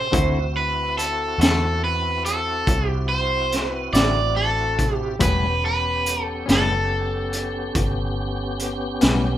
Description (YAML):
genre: slow blues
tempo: 47 BPM (dotted quarters)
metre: 12/8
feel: straight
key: unclear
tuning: A4 = 440 Hz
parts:
  - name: overdriven semi-hollow guitar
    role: melody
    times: 0.0-9.0 s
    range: A4 to D5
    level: -23 LUFS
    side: right 1 dB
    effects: none
  - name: tonewheel organ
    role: sustained chords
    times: 0.0-9.4 s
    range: B3 to G4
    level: -30 LUFS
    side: equal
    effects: chorus vibrato, fast rotary speaker
  - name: vintage muted fingered electric bass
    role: bass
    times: 0.0-9.4 s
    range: E1 to E2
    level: -26 LUFS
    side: equal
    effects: none
  - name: semi-hollow electric guitar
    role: accompaniment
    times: 0.1-9.3 s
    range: A2 to F#4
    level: -26 LUFS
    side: left 5 dB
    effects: tremolo
  - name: raw garage drum kit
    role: drums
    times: 0.1-9.2 s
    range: hi-hat, kick drum, snare drum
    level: -21 LUFS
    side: equal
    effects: none
room: studio reverb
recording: rough home demo mix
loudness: -19 LUFS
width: side -12 dB against mid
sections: 0.0-9.4 A section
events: none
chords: 0.1 D9; 5.2 A9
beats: | 0.12 1.39 2.66 3.93 | 5.20 6.47 7.74 9.01